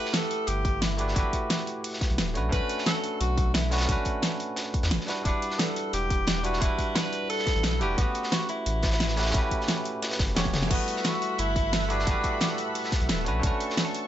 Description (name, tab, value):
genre	liquid drum and bass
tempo	176 BPM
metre	4/4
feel	straight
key	unclear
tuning	A4 = 440 Hz
part	warm tenor saxophone	melody	0.0-12.6 s	B3 to B4	-32 LUFS	equal	dub echo
part	barky tine electric piano	accompaniment	0.0-14.1 s	G3 to F#5	-32 LUFS	right 1 dB	dub echo
part	crunchy breakbeat drum kit	drums	0.1-14.0 s	hi-hat, snare drum	-34 LUFS	equal	high-pass filter on hats, high-pass filter on snare, high-pass filter on room
part	pop drum kit	drums	0.1-14.0 s	crash cymbal, hi-hat, snare drum, toms	-29 LUFS	equal	none
part	warm sub bass	bass	0.5-13.5 s	D1 to E2	-29 LUFS	equal	none
part	electronic kick drum	drums	0.6-13.5 s	none	-28 LUFS	equal	none
part	lush unison pad	sustained chords	10.7-14.1 s	A4 to C#6	-34 LUFS	equal	chorus
room	light reverb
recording	nothing above 7.9 kHz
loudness	-24 LUFS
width	side -11 dB against mid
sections	0.0-10.7 A section; 10.7-14.1 A section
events	drop 0.0-10.7, 10.7-14.1; drum fill 10.4; band accent 10.6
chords	0.0 Gmaj13; 2.4 Bm9; 5.1 Em9; 8.0 A13; 10.7 Gmaj13; 13.3 Bm9